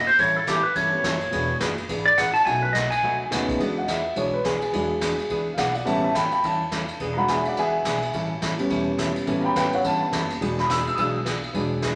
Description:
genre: country, western swing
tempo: 211 BPM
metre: 4/4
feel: swing 60% on 8ths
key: E mixolydian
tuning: A4 = 440 Hz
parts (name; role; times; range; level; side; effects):
- clean lap steel guitar; melody; 0.0-3.2 s; G4 to A5; -22 LUFS; equal; none
- upright bass; bass; 0.0-12.0 s; E1 to E2; -37 LUFS; equal; none
- vintage brush drum kit; drums; 0.1-11.9 s; hi-hat, kick drum, ride cymbal, snare drum; -33 LUFS; equal; none
- archtop guitar, miked and amplified; accompaniment; 0.2-11.9 s; B2 to A4; -32 LUFS; equal; none
- dark upright piano; accompaniment; 0.9-12.0 s; F#3 to E6; -27 LUFS; equal; none
room: wet large studio reverb, RT60 1.1 s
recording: none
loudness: -23 LUFS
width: mono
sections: 0.0-3.6 A section; 3.6-12.0 A section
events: electric slide guitar solo 0.0-3.6; upright piano solo 3.6-12.0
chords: 0.2 A7; 1.3 E9; 2.5 B9; 3.6 E9; 5.9 A9; 7.0 E9; 8.1 A9; 10.4 E9

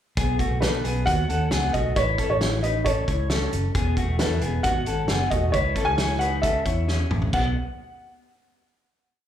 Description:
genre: jangly indie pop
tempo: 134 BPM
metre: 4/4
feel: straight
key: B mixolydian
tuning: A4 = 440 Hz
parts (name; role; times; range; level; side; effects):
- mellow electric guitar; arpeggios; 0.2-7.5 s; A3 to C#5; -28 LUFS; left 4 dB; wide subtle chorus, slapback echo, analog delay
- vintage muted fingered electric bass; bass; 0.2-7.5 s; E1 to B2; -26 LUFS; equal; none
- loose indie drum kit; drums; 0.2-7.4 s; crash cymbal, hi-hat, kick drum, snare drum, toms; -27 LUFS; equal; none
- dark upright piano; melody; 0.6-7.5 s; B4 to G#5; -26 LUFS; right 1 dB; slapback echo, analog delay
room: light reverb, small room ambience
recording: live gig heard through the venue's PA, club reverb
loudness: -21 LUFS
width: side -10 dB against mid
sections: 0.2-7.3 verse; 7.3-9.1 final chord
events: drum fill 6.9-7.3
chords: 0.2 B; 2.0 A; 3.8 Eadd9; 5.5 C#m; 7.3 B5

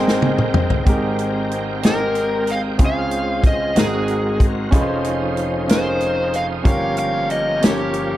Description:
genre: slow gospel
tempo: 62 BPM (dotted quarters)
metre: 6/8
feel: straight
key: Ab major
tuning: A4 = 439 Hz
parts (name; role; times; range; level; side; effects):
- clear grand piano; accompaniment; 0.0-8.2 s; F1 to G5; -22 LUFS; equal; none
- bright tonewheel organ; sustained chords; 0.0-8.2 s; Db3 to G5; -26 LUFS; right 1 dB; slow rotary speaker, overdrive, chorus vibrato
- natural country drum kit; drums; 0.1-8.1 s; hi-hat, kick drum, snare drum, toms; -17 LUFS; equal; none
- overdriven slide guitar; melody; 1.9-8.2 s; G4 to F5; -21 LUFS; left 1 dB; none
room: light reverb, small room ambience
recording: dark, warm production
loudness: -16 LUFS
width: side -14 dB against mid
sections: 0.9-8.2 A section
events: drum fill 0.0-0.9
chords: 0.0 Abmaj9; 2.8 Dbmaj7; 3.8 Ab9; 4.7 Dbmaj9/F; 6.7 Gm7b5

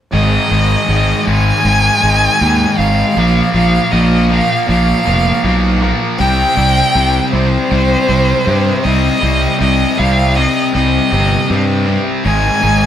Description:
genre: post-rock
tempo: 79 BPM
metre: 4/4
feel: straight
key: C minor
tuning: A4 = 440 Hz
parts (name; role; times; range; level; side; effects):
- rich violin; melody; 0.1-12.9 s; C5 to Ab5; -16 LUFS; equal; none
- distorted electric guitar; riff; 0.1-12.9 s; Ab2 to C4; -15 LUFS; left 1 dB; distortion
- fuzz fingered electric bass; bass; 0.1-12.9 s; F1 to G2; -14 LUFS; equal; overdrive
room: moderate stone room reverb, RT60 1.0 s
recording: band playing live in one room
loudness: -10 LUFS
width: side -10 dB against mid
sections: 0.1-12.9 A section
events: none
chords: 0.1 Ab5; 3.2 Bb5; 6.2 Cm; 12.3 Ab

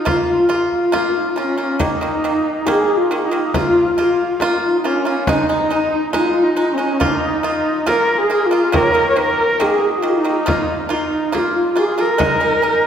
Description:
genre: mongolian traditional, Mongolian folk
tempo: 69 BPM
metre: 4/4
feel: straight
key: Bb yu mode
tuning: A4 = 439 Hz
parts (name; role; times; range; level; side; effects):
- dark horsehead fiddle; melody; 0.0-12.9 s; Db4 to Db5; -18 LUFS; left 2 dB; none
- breathy mellow low xiao; second line; 0.0-12.9 s; Db4 to Db5; -21 LUFS; right 2 dB; none
- pipa; arpeggios; 0.1-12.9 s; Eb3 to F4; -20 LUFS; right 2 dB; none
- frame drum; percussion; 0.1-12.4 s; none; -25 LUFS; left 1 dB; none
room: wet scoring stage reverb, RT60 1.9 s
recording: recorded in a church or concert hall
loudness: -14 LUFS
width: side -8 dB against mid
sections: 0.1-12.9 A section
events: none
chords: 0.1 Bb5; 1.8 Eb5; 3.5 Bb5; 5.3 Ab5; 7.0 Bb5; 8.7 Eb5; 10.5 Bb5; 12.2 Ab5

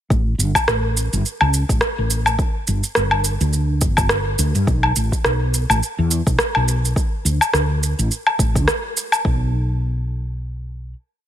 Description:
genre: organic downtempo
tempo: 105 BPM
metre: 4/4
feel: swing 57% on 16ths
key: unclear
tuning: A4 = 440 Hz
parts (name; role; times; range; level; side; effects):
- woody fretless electric bass; bass; 0.1-10.9 s; G1 to G2; -19 LUFS; equal; ensemble chorus, sidechain pumping
- electronic kick drum; drums; 0.1-9.4 s; none; -20 LUFS; equal; overdrive
- electronic shaker, woodblock and rim click; drums; 0.1-9.2 s; none; -20 LUFS; equal; overdrive
room: light reverb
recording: none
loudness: -16 LUFS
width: side -11 dB against mid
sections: 0.1-9.2 groove; 9.2-11.3 final note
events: none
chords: none

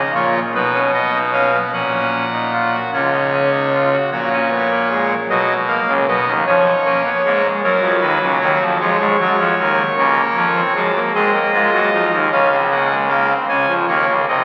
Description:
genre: classical, baroque-style 3-part fugue for pipe organ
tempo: 51 BPM (dotted quarters)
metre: 6/8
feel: straight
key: F# major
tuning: A4 = 440 Hz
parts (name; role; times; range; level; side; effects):
- pipe organ, trumpet; solo; 0.0-14.4 s; A#1 to G#5; -16 LUFS; equal; none
room: wet church reverb, RT60 3.8 s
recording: very old 78 rpm record, vinyl crackle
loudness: -16 LUFS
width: mono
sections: 0.0-4.1 A section; 4.1-13.5 B section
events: none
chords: 0.0 A#m; 0.6 B; 1.7 F#/A#; 2.9 C#; 4.1 F#/A#; 5.3 B; 6.5 C#7/E#; 7.6 F#; 8.8 C#/E#; 10.0 F#/C#; 11.1 G#7; 12.3 C#

